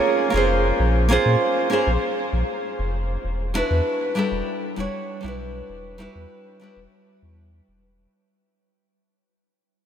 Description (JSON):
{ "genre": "sunset chillout", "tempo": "98 BPM", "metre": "4/4", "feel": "straight", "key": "unclear", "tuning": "A4 = 440 Hz", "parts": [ { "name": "nylon-string guitar", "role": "accompaniment", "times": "0.0-6.8 s", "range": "G3 to C#5", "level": "-22 LUFS", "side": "right 1 dB", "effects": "auto-pan, analog delay" }, { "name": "warm sub bass", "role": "bass", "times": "0.3-8.1 s", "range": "E1 to A#2", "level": "-23 LUFS", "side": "equal", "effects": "none" } ], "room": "wet huge ambient reverb, RT60 9.0 s", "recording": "dreamy mix soaked in reverb", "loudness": "-20 LUFS", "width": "side -9 dB against mid", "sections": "0.0-8.1 A section", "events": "fade-out 0.0-8.1", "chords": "0.0 A#m9; 3.2 Em9" }